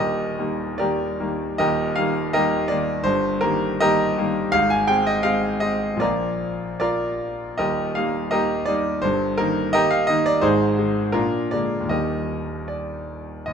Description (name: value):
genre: classical, romantic character piece for solo piano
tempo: 70-89 BPM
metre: 2/4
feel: rubato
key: Eb major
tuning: A4 = 440 Hz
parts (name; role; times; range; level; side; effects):
- bright grand piano; solo; 0.0-13.5 s; Eb1 to Ab5; -20 LUFS; equal; none
room: light reverb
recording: close, detailed microphones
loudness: -19 LUFS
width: side -7 dB against mid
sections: 0.0-1.6 A section; 1.6-13.5 A section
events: none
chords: 0.0 Eb; 3.1 Eb/G; 4.5 Ab; 6.0 Bb; 7.6 Eb; 9.0 Eb/G; 10.4 Ab; 11.1 Bb7; 11.9 Eb